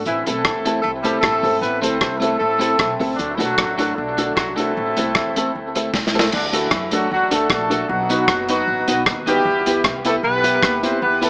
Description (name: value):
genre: ska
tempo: 153 BPM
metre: 4/4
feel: swing 53% on 8ths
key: A dorian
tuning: A4 = 443 Hz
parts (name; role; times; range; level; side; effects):
- clean electric guitar; accompaniment; 0.0-11.3 s; A3 to B4; -28 LUFS; equal; dub echo
- upright bass; bass; 0.0-11.3 s; F#1 to F#2; -34 LUFS; equal; none
- warm horn section; melody; 0.1-11.3 s; D3 to C5; -22 LUFS; equal; dub echo
- crunchy breakbeat drum kit; drums; 0.1-11.3 s; crash cymbal, hi-hat, kick drum, rim click, snare drum; -24 LUFS; equal; none
- warm upright piano; stabs; 0.3-11.3 s; C4 to B4; -28 LUFS; equal; dub echo
room: moderate studio reverb, RT60 0.8 s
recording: small speaker sound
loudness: -19 LUFS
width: mono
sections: 0.0-6.3 A section; 6.3-11.3 B section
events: drum fill 5.9-6.3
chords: 0.1 Am; 3.2 D; 4.8 Am; 6.3 D; 7.9 B; 9.5 Em